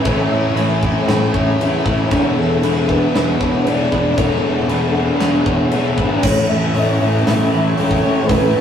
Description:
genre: rock, shoegaze and dream pop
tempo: 117 BPM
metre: 4/4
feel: straight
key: A major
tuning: A4 = 440 Hz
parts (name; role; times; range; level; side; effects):
- soft octave-layered synth lead; melody; 0.0-8.6 s; A4 to E5; -23 LUFS; left 1 dB; chorus, slapback echo
- string machine, violins; sustained chords; 0.0-8.6 s; D4 to E6; -28 LUFS; right 1 dB; ensemble chorus
- direct-recorded clean electric guitar; arpeggios; 0.0-8.6 s; B4 to C#5; -28 LUFS; right 4 dB; none
- crunchy overdriven guitar; riff; 0.0-8.6 s; A2 to G#4; -18 LUFS; left 3 dB; none
- distorted electric guitar; riff; 0.0-6.2 s; E2 to A3; -25 LUFS; right 1 dB; overdrive
- overdriven semi-hollow guitar; riff; 0.0-8.6 s; E2 to E4; -26 LUFS; right 4 dB; none
- huge arena drum kit; drums; 0.0-8.4 s; crash cymbal, hi-hat, kick drum, snare drum; -22 LUFS; equal; none
- fuzz fingered electric bass; bass; 0.1-8.6 s; E1 to E2; -20 LUFS; equal; overdrive
room: wet studio ambience, RT60 0.5 s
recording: rough rehearsal-room recording, tube saturation, small room ambience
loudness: -14 LUFS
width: side -8 dB against mid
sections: 0.0-6.2 A section; 6.2-8.6 B section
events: none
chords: 0.0 Amaj7; 2.1 E9sus4; 6.2 Amaj7

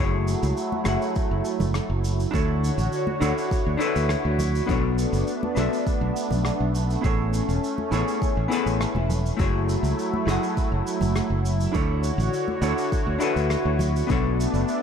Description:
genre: sunset chillout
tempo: 102 BPM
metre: 4/4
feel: straight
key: F# minor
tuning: A4 = 440 Hz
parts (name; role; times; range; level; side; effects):
- hollow-body jazz guitar; accompaniment; 0.0-14.8 s; A3 to F#5; -28 LUFS; moving between left 8 dB and right 4 dB; auto-pan, digital delay
- lush unison pad; sustained chords; 0.0-14.8 s; D3 to C#5; -27 LUFS; right 1 dB; chorus, phaser
- fingered electric bass; bass; 0.0-14.6 s; E1 to D2; -24 LUFS; equal; none
- shaker and rim click; drums; 0.3-14.8 s; none; -37 LUFS; right 1 dB; none
- congas; percussion; 0.7-13.9 s; none; -32 LUFS; equal; none
- electronic kick drum; drums; 1.2-14.2 s; none; -26 LUFS; equal; none
room: moderate lush hall reverb, RT60 2.1 s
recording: dark, warm production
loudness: -21 LUFS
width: side -7 dB against mid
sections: 0.0-14.8 A section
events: none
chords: 0.0 F#m7; 2.3 Dmaj7; 4.7 Bm7; 7.0 Amaj9; 9.4 F#m7; 11.7 Dmaj7; 14.1 Bm7

